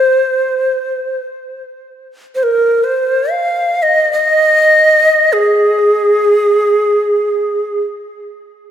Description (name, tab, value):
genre	world meditative, free-time meditation music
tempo	free time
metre	none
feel	none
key	Ab major pentatonic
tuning	A4 = 439 Hz
part	breathy Native American-style cedar flute	solo	0.0-7.8 s	Ab4 to F5	-10 LUFS	equal	ping-pong delay
room	wet scoring stage reverb, RT60 1.6 s, small room ambience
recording	none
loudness	-10 LUFS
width	side -9 dB against mid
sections	0.0-8.2 A section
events	none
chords	none